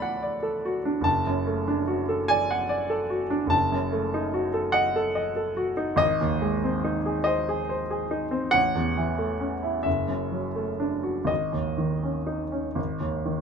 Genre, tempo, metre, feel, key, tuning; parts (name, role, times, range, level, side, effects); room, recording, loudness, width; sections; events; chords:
classical, romantic nocturne for solo piano; 40-49 BPM (dotted quarters); 6/8; rubato; A4 = 440 Hz
clear baby grand piano; solo; 0.0-13.4 s; F#1 to D6; -24 LUFS; equal
light reverb; -24 LUFS; side -6 dB against mid
0.0-13.4 A section
0.0 D; 1.1 D/F#; 3.5 D#dim/F#; 6.0 G#; 8.6 A; 9.9 D/F#; 11.3 G#sus4; 12.8 G#5